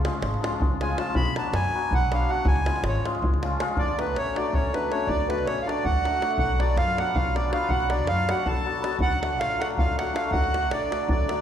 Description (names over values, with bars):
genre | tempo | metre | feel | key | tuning
balkan folk, Balkan wedding band | 321 BPM (eighths) | 7/8 | straight | unclear | A4 = 441 Hz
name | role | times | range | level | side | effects
hammered dulcimer | accompaniment | 0.0-11.4 s | E#3 to F#4 | -29 LUFS | left 5 dB | none
upright bass | bass | 0.0-11.4 s | G#1 to F#2 | -28 LUFS | equal | none
davul | percussion | 0.0-11.4 s | none | -29 LUFS | equal | none
accordion | melody | 0.8-11.4 s | B4 to B5 | -27 LUFS | right 4 dB | none
accordion | second line | 3.8-11.4 s | B3 to A4 | -33 LUFS | left 3 dB | none
room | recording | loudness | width
wet recital hall reverb, RT60 1.4 s | recorded in a church or concert hall | -22 LUFS | side -9 dB against mid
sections
0.0-3.8 A section; 3.8-11.4 B section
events
accordion solo 0.0-3.8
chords
0.0 C#; 1.2 Bm; 2.5 C#; 3.8 D; 6.4 Bm; 9.0 D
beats
0.03 0.22 0.41 0.59 0.78 0.97 | 1.16 1.34 1.53 1.72 1.90 2.09 2.28 | 2.47 2.65 2.84 3.03 3.21 3.40 3.59 | 3.77 3.96 4.15 4.33 4.52 4.71 4.89 | 5.08 5.27 5.46 5.64 5.83 6.01 6.20 | 6.39 6.58 6.76 6.95 7.13 7.32 7.51 | 7.70 7.88 8.07 8.26 8.44 8.63 8.82 | 9.01 9.19 9.38 9.57 9.76 9.94 10.13 | 10.32 10.51 10.69 10.88 11.07 11.26